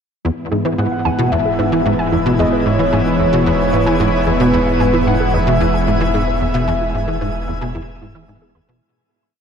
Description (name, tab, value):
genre	ambient, sequencer-driven space music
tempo	112 BPM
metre	4/4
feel	straight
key	E major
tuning	A4 = 442 Hz
part	lush unison pad	sustained chords	0.2-8.8 s	G#2 to E4	-18 LUFS	equal	chorus
part	warbly dusty pluck	arpeggios	0.2-8.8 s	E4 to E6	-25 LUFS	right 3 dB	chorus, auto-pan, vintage 12-bit sampler grit, tape echo
part	tight sequencer bass	riff	0.2-8.8 s	E2 to E3	-19 LUFS	equal	ensemble chorus, tape echo
part	warm sub bass	bass	0.2-8.8 s	E1	-24 LUFS	equal	tube saturation
part	twinkling granular texture	texture	1.3-8.8 s	G#4 to G#5	-32 LUFS	equal	built-in reverb
part	pulse-width lead	melody	0.8-8.2 s	B4 to F#5	-20 LUFS	equal	chorus, tape echo
room	wet shimmer reverb, RT60 8.5 s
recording	dark, warm production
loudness	-14 LUFS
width	side -7 dB against mid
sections	0.2-8.8 A section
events	fade-in on sub bass 0.2-8.8; fade-in on synth texture 0.2-8.8; fade-out 6.0-8.8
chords	0.2 E